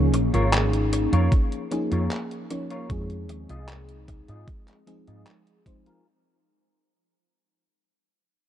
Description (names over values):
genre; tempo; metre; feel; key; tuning
vaporwave; 76 BPM; 4/4; straight; unclear; A4 = 441 Hz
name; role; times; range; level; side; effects
FM electric piano with soft pad layer; accompaniment; 0.0-6.0 s; F3 to Db5; -28 LUFS; left 1 dB; tremolo, wide subtle chorus, analog delay
woody fretless electric bass; bass; 0.0-5.2 s; Ab1 to Ab2; -24 LUFS; equal; tube saturation, wide subtle chorus
semi-hollow electric guitar; riff; 0.1-6.1 s; F4 to Eb5; -32 LUFS; left 1 dB; ensemble chorus, low-pass filter, analog delay
detuned 8-bit digital drum machine; drums; 0.1-6.0 s; handclaps, hi-hat; -29 LUFS; equal; overdrive
electronic kick drum; drums; 1.3-5.8 s; none; -24 LUFS; equal; overdrive
room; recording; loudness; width
light reverb, digital ambience; dark, warm production; -22 LUFS; side -11 dB against mid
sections
0.0-6.1 A section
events
fade-out 0.0-6.1; filter sweep on clean electric guitar 0.0-6.1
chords
0.0 Db6; 2.9 Fm7